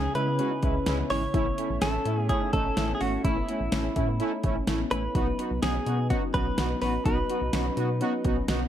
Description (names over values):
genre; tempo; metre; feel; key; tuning
synth-pop; 126 BPM; 4/4; straight; unclear; A4 = 438 Hz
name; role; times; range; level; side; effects
direct-recorded clean electric guitar; melody; 0.0-8.4 s; E4 to C#5; -31 LUFS; equal; digital delay
analog synth brass; accompaniment; 0.0-8.6 s; G#3 to G#4; -32 LUFS; right 1 dB; chorus
lush unison pad; sustained chords; 0.0-8.7 s; C#3 to G#4; -35 LUFS; equal; chorus
soft round pluck; arpeggios; 0.0-8.7 s; B3 to E4; -35 LUFS; left 3 dB; chorus, digital delay
solid FM bass; bass; 0.0-8.7 s; G#1 to C#3; -31 LUFS; equal; none
deep house drum kit; drums; 0.1-8.6 s; hi-hat, kick drum, snare drum; -29 LUFS; equal; gated reverb
room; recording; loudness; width
light reverb; none; -24 LUFS; side -10 dB against mid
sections
0.0-8.7 A section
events
none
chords
0.0 C#m; 1.3 A; 5.2 B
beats
0.39 0.86 | 1.34 1.82 2.29 2.77 | 3.25 3.72 4.20 4.67 | 5.15 5.63 6.10 6.58 | 7.05 7.53 8.01 8.48